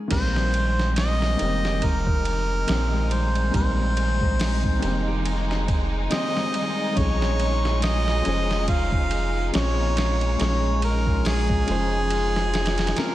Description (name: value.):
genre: trip hop.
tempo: 70 BPM.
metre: 4/4.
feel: swing 57% on 16ths.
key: unclear.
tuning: A4 = 440 Hz.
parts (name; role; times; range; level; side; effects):
felt-muted upright piano; accompaniment; 0.0-13.1 s; Db3 to Db5; -31 LUFS; left 1 dB; harmonic tremolo, tape echo.
concert harp; arpeggios; 0.0-13.1 s; G3 to Ab4; -31 LUFS; left 4 dB; vintage 12-bit sampler grit, diffuse ambient delay.
warm harmonica; melody; 0.1-13.1 s; Ab4 to F5; -27 LUFS; equal; vintage 12-bit sampler grit, tape echo.
rich studio violin section; sustained chords; 0.1-13.1 s; Ab3 to Eb4; -33 LUFS; equal; vintage 12-bit sampler grit.
soft dub sub bass; bass; 0.1-12.9 s; F1 to Bb1; -24 LUFS; equal; none.
dusty soul sampler-style drum kit; drums; 0.1-13.1 s; crash cymbal, hi-hat, kick drum, ride cymbal, snare drum; -27 LUFS; right 1 dB; vintage 12-bit sampler grit.
room: moderate plate reverb, RT60 3.3 s.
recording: dreamy mix soaked in reverb.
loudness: -20 LUFS.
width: side -14 dB against mid.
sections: 0.1-13.1 A section.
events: none.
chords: 0.1 Abmaj7; 7.0 Bbm7.